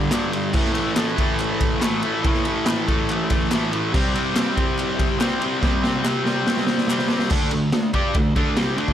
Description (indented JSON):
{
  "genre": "garage rock duo or trio",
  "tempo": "142 BPM",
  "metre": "4/4",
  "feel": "straight",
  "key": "unclear",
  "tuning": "A4 = 438 Hz",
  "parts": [
    { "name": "fuzz guitar", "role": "riff", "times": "0.0-8.9 s", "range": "G2 to G4", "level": "-21 LUFS", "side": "equal", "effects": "distortion" },
    { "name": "raw garage drum kit", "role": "drums", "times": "0.1-8.9 s", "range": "crash cymbal, kick drum, ride cymbal, snare drum", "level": "-22 LUFS", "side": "equal", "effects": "none" },
    { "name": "group handclap", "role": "percussion", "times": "0.1-7.0 s", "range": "none", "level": "-33 LUFS", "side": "left 3 dB", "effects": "none" }
  ],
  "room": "light reverb",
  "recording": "none",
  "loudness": "-18 LUFS",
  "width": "side -10 dB against mid",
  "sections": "0.0-7.3 A section; 7.3-8.9 B section",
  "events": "drum fill 5.6-7.3",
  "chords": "0.0 G5; 0.6 A5; 3.9 C5; 7.3 D5",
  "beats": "0.12 | 0.55 0.97 1.40 1.82 | 2.25 2.67 3.09 3.52 | 3.94 4.36 4.78 5.21 | 5.63 6.05 6.47 6.89 | 7.31 7.74 8.16 8.58"
}